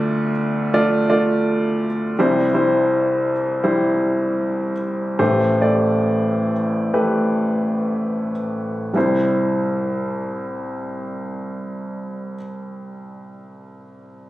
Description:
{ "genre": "folk", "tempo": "54-83 BPM", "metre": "4/4", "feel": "straight", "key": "C major", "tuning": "A4 = 440 Hz", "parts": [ { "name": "warm upright piano", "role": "solo", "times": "0.0-14.3 s", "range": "A1 to D5", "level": "-18 LUFS", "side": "equal", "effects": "none" } ], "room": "moderate studio reverb, RT60 0.6 s", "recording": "recorded on a phone in the room, studio reverb", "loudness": "-18 LUFS", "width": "side -16 dB against mid", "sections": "0.0-2.2 A section; 2.2-9.0 B section; 9.0-13.4 C section", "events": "slowing down 2.2-9.0", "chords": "0.0 Dm; 2.2 C; 5.2 Am7; 9.0 C" }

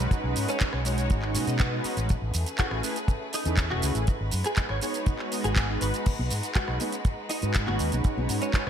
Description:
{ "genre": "nu-disco, nu disco", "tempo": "121 BPM", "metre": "4/4", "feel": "straight", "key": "B mixolydian", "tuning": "A4 = 439 Hz", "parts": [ { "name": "mellow synth brass", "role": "accompaniment", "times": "0.0-8.7 s", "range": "G#3 to D#5", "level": "-32 LUFS", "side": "right 1 dB", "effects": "chorus, sidechain pumping" }, { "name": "rich chamber violin section", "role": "sustained chords", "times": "0.0-8.7 s", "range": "G#3 to C#5", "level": "-37 LUFS", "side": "left 1 dB", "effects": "sidechain pumping" }, { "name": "fingered electric bass with an envelope filter", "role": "bass", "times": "0.0-8.7 s", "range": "E1 to B2", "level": "-29 LUFS", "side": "equal", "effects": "none" }, { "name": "house drum kit", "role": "drums", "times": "0.0-8.7 s", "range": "crash cymbal, handclaps, hi-hat, rim click, shaker", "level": "-32 LUFS", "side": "right 2 dB", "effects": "gated reverb" }, { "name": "kick drum", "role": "drums", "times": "0.1-8.6 s", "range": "none", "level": "-24 LUFS", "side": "equal", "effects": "none" }, { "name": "direct-recorded clean electric guitar", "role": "melody", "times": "0.5-8.7 s", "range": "B3 to C#5", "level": "-34 LUFS", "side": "equal", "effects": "ensemble chorus, digital delay" }, { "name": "congas", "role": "percussion", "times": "6.2-8.3 s", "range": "none", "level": "-38 LUFS", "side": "left 2 dB", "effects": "none" } ], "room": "light reverb, studio ambience", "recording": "bright 1980s-style digital production", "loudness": "-24 LUFS", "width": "side -9 dB against mid", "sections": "0.0-8.7 A section", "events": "none", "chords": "0.0 B6; 2.1 Amaj9; 4.1 G#m7" }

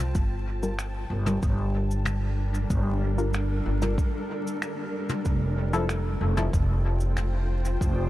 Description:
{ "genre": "ambient dub", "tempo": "94 BPM", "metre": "4/4", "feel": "straight", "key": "G minor", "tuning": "A4 = 439 Hz", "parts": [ { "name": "granular cloud pad", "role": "sustained chords", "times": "0.0-8.1 s", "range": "G3 to A5", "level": "-33 LUFS", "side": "equal", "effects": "built-in reverb" }, { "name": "upright bass", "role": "bass", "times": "0.0-8.1 s", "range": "F1 to C2", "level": "-26 LUFS", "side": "equal", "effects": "tube saturation" }, { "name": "jazz brush drum kit", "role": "drums", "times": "0.1-7.9 s", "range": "cabasa, finger snaps, toms", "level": "-36 LUFS", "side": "left 1 dB", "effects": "dub echo" }, { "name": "electronic kick drum", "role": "drums", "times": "0.2-7.9 s", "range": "none", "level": "-26 LUFS", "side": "equal", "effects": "none" }, { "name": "filtered dub chord stab", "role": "stabs", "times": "0.6-6.5 s", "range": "F3 to Bb4", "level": "-32 LUFS", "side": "left 2 dB", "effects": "chorus, dub echo" } ], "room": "small room ambience", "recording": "vinyl crackle", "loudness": "-24 LUFS", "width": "side -15 dB against mid", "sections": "0.0-8.1 A section", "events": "none", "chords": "0.1 Gm7; 5.3 Fmaj7" }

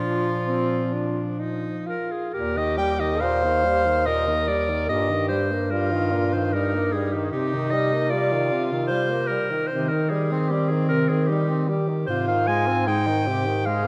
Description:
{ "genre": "classical, lyrical piece for single-reed quartet", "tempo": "62-78 BPM", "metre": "3/4", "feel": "rubato", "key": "Eb major", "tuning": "A4 = 440 Hz", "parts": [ { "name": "clear clarinet", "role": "melody", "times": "0.0-13.9 s", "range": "F4 to Ab5", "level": "-28 LUFS", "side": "equal", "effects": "none" }, { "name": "warm alto saxophone", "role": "second line", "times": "0.0-13.9 s", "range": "C4 to C5", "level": "-30 LUFS", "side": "equal", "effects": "none" }, { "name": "mellow tenor saxophone", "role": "accompaniment", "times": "0.0-13.9 s", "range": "Bb2 to C4", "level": "-31 LUFS", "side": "equal", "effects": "none" }, { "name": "mellow bass clarinet", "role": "bass", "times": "0.0-13.9 s", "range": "Eb2 to Eb3", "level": "-29 LUFS", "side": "equal", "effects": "none" } ], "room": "moderate concert hall reverb, RT60 1.9 s", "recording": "none", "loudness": "-23 LUFS", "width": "mono", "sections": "0.0-2.3 A section; 2.3-13.9 B section", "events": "none", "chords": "0.0 Bb; 2.3 Eb; 4.9 Eb/G; 7.3 Cm7; 9.7 Cm; 12.1 Ab" }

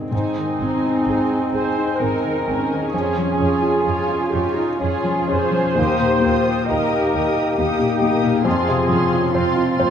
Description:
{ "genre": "classical", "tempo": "58-69 BPM", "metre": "3/4", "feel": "rubato", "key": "Ab major", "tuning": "A4 = 441 Hz", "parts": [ { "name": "warm baby grand piano", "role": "melody", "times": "0.0-9.9 s", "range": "Eb2 to Bb5", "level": "-22 LUFS", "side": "left 3 dB", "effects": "none" }, { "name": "muted studio cello section", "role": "bass", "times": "0.0-9.9 s", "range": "C3 to Ab4", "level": "-27 LUFS", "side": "right 3 dB", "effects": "none" }, { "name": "muted studio violin section", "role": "melody", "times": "0.1-9.9 s", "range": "Ab5 to Eb6", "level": "-33 LUFS", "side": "left 3 dB", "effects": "none" }, { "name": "dark clarinet", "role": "second line", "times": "0.1-9.9 s", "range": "Eb4 to F4", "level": "-28 LUFS", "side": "left 1 dB", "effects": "none" }, { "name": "mellow flute section", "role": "second line", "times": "0.1-9.9 s", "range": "G5 to C6", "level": "-29 LUFS", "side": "equal", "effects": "none" }, { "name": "muted studio violin section", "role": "second line", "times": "0.1-9.9 s", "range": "Eb4 to F5", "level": "-31 LUFS", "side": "left 2 dB", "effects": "none" }, { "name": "clear bassoon", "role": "accompaniment", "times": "0.1-9.9 s", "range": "Bb3 to Db4", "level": "-29 LUFS", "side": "right 3 dB", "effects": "none" }, { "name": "muted studio viola section", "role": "accompaniment", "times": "0.1-9.9 s", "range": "Eb4 to C5", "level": "-23 LUFS", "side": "right 1 dB", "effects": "none" }, { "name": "mellow French horn section", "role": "sustained chords", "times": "0.1-9.9 s", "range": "F3 to Ab4", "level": "-28 LUFS", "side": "left 3 dB", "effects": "none" }, { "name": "muted chamber double bass section", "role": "bass", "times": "0.1-9.9 s", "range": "Ab1 to F2", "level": "-29 LUFS", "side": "right 4 dB", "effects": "none" }, { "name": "timpani", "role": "percussion", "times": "5.8-7.1 s", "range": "Eb3", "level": "-31 LUFS", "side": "right 2 dB", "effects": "none" } ], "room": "moderate scoring stage reverb, RT60 1.9 s", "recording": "none", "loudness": "-17 LUFS", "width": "side -8 dB against mid", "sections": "0.1-9.9 A section", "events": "none", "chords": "0.1 Ab; 2.9 Db/F; 5.8 Eb; 8.5 Fm" }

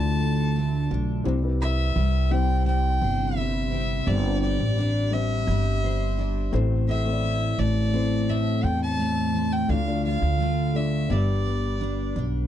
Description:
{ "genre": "acoustic pop", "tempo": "85 BPM", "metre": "4/4", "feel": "straight", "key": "C major", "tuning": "A4 = 435 Hz", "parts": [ { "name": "warm violin", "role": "melody", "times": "0.0-12.2 s", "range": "D5 to A5", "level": "-30 LUFS", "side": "equal", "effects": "none" }, { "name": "felt-muted upright piano", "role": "accompaniment", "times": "0.0-12.5 s", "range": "G3 to D5", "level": "-32 LUFS", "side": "left 6 dB", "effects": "none" }, { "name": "picked steel-string acoustic guitar", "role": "accompaniment", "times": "0.0-12.5 s", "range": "A2 to C5", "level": "-28 LUFS", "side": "right 1 dB", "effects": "double-tracked left and right" }, { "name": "upright bass", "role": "bass", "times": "0.0-12.5 s", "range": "G1 to E2", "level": "-24 LUFS", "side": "equal", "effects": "none" } ], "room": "little or no reverb", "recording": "dry, close 1970s-style studio recording", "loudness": "-22 LUFS", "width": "side -11 dB against mid", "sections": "0.0-12.5 A section", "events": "none", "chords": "0.0 Dm; 1.3 C; 4.1 Gsus4; 6.5 Am; 9.7 Dm; 11.1 G" }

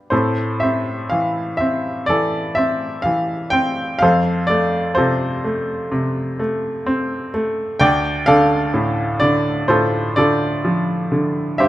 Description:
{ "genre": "classical, lyrical solo piano", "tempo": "63 BPM", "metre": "4/4", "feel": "rubato", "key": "unclear", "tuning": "A4 = 439 Hz", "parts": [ { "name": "bright baby grand piano", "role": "solo", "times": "0.0-11.7 s", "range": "D2 to G5", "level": "-16 LUFS", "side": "equal", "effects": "none" } ], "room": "light reverb", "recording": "close, detailed microphones", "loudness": "-16 LUFS", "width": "side -14 dB against mid", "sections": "0.1-11.7 A section", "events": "none", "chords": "0.1 Am; 4.0 F; 7.8 Dm" }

